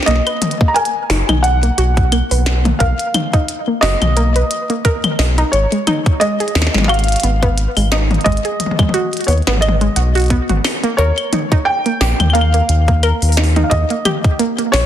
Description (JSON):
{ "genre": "IDM", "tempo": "88 BPM", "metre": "4/4", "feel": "swing 56% on 16ths", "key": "B lydian", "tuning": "A4 = 440 Hz", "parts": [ { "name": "glitchy drum kit", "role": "drums", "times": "0.0-14.9 s", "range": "claves, hi-hat, snare drum, toms", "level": "-19 LUFS", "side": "left 2 dB", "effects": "soft clipping on snare" }, { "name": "felt-muted upright piano", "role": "melody", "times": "0.1-14.9 s", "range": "C#5 to A#5", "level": "-20 LUFS", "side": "equal", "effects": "ping-pong delay" }, { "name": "warbly dusty pluck", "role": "arpeggios", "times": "0.1-14.7 s", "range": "G#3 to B4", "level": "-20 LUFS", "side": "right 2 dB", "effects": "chorus, digital delay" }, { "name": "round analog bass", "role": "bass", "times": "0.1-14.9 s", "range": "F#1 to D#2", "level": "-15 LUFS", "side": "equal", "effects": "none" }, { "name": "electronic kick drum", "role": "drums", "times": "0.6-14.4 s", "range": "none", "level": "-16 LUFS", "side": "equal", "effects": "none" } ], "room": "light reverb, digital ambience", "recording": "dense, heavily limited modern master", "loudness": "-12 LUFS", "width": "side -10 dB against mid", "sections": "0.1-14.9 A section", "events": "none", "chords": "0.1 Bmaj7; 5.5 G#m; 11.0 D#7(no3)" }